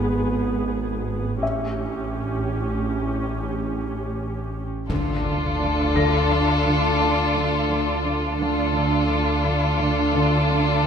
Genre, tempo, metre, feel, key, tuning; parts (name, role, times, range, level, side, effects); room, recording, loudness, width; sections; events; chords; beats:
cinematic, suspense film score; 86 BPM; 5/4; straight; D minor from 4.9 s; A4 = 440 Hz
muted chamber viola section; accompaniment; 0.0-10.9 s; Cb4 to Ab4; -26 LUFS; right 1 dB
muted chamber cello section; bass; 0.0-10.9 s; Ab2 to D3; -29 LUFS; right 2 dB
muted symphonic double bass section; bass; 0.0-10.9 s; Ab1 to D2; -28 LUFS; right 2 dB
deep rumbling drone; drone; 0.0-10.9 s; Ab1 to D2; -31 LUFS; left 1 dB; built-in reverb
warm grand piano; texture; 1.4-10.9 s; A4 to Bb6; -30 LUFS; left 5 dB
muted chamber violin section; melody; 4.9-10.9 s; A4; -26 LUFS; left 4 dB
muted chamber violin section; second line; 4.9-10.9 s; F4; -25 LUFS; left 1 dB
muted symphonic cello section; riff; 4.9-10.9 s; D3 to D4; -28 LUFS; left 1 dB
taiko ensemble; drums; 4.9-6.3 s; -33 LUFS; left 1 dB
impact; sound effects; 4.9-8.4 s; -33 LUFS; left 2 dB
moderate concert hall reverb, RT60 2.1 s; -20 LUFS; side -7 dB against mid
0.0-4.9 A section; 4.9-10.9 B section
impact 4.9-8.4
0.0 Abm; 1.4 A7; 4.9 Dm
0.02 0.72 | 1.42 2.11 2.81 3.51 4.21 | 4.90 5.60 6.30 7.00 7.69 | 8.39 9.09 9.79 10.48